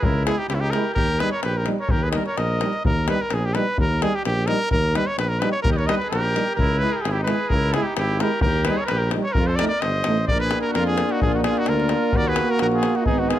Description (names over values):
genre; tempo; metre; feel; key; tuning
balkan folk, Balkan brass band; 129 BPM; 2/4; straight; Eb phrygian dominant, Bb phrygian dominant from 10.3 s; A4 = 441 Hz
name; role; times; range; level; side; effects
clear trumpet; melody; 0.0-13.4 s; Fb4 to Eb5; -24 LUFS; equal; none
clear trumpet; second line; 0.0-2.8, 5.7-13.4 s; Db4 to C5; -30 LUFS; right 1 dB; none
warm tuba; bass; 0.0-13.3 s; G1 to F2; -25 LUFS; equal; none
davul; percussion; 0.0-13.4 s; none; -26 LUFS; left 2 dB; none
warm euphonium; accompaniment; 0.3-13.4 s; G3 to Cb4; -27 LUFS; right 5 dB; none
warm trombone; accompaniment; 0.3-13.4 s; D4 to Gb4; -30 LUFS; left 7 dB; none
room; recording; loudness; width
light reverb; close, detailed microphones; -19 LUFS; side -12 dB against mid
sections
0.0-2.9 A section; 2.9-10.3 A section; 10.3-13.4 B section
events
none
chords
0.0 Dbm; 1.0 Eb; 6.6 Dbm; 8.4 Eb; 9.4 F7; 10.3 Bb; 12.1 Ebm